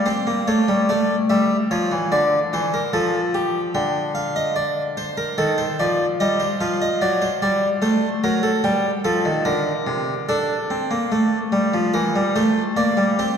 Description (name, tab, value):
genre	classical, baroque-style two-part invention for harpsichord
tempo	73 BPM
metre	4/4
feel	straight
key	G minor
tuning	A4 = 440 Hz
part	harpsichord	solo	0.0-13.4 s	C3 to G5	-18 LUFS	equal	none
room	wet church reverb, RT60 2.9 s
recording	dark, warm production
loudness	-18 LUFS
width	side -7 dB against mid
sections	0.0-13.4 A section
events	none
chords	0.5 A7; 2.1 Dm; 3.8 Gm/D; 5.4 Am7b5/Eb; 7.0 D7/F#; 8.6 Gm; 10.3 D5; 11.9 Em7b5